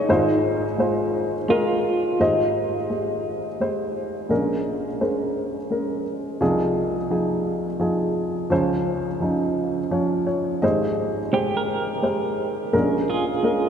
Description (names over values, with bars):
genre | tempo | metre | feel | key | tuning
acoustic folk-pop ballad | 86 BPM | 3/4 | straight | Ab major | A4 = 444 Hz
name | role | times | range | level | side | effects
dark upright piano | melody | 0.0-13.7 s | Ab1 to Eb5 | -21 LUFS | equal | none
clean electric guitar | arpeggios | 0.0-2.5, 11.3-13.7 s | Eb4 to Bb4 | -27 LUFS | right 2 dB | tremolo
room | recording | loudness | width
wet cathedral reverb, RT60 6.7 s | in a vast, echoing space | -21 LUFS | side -8 dB against mid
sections
0.0-2.2 A section; 2.2-10.6 B section; 10.6-13.7 C section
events
none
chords
0.1 Ab6; 2.2 Abmaj7; 4.3 Bbm7; 6.4 Fm7/C; 8.5 Dbmaj7; 10.6 Abmaj7; 12.7 Bbm7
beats
| 0.09 0.79 1.49 | 2.20 2.90 3.60 | 4.30 5.00 5.70 | 6.40 7.10 7.80 | 8.51 9.21 9.92 | 10.63 11.33 12.04 | 12.73 13.43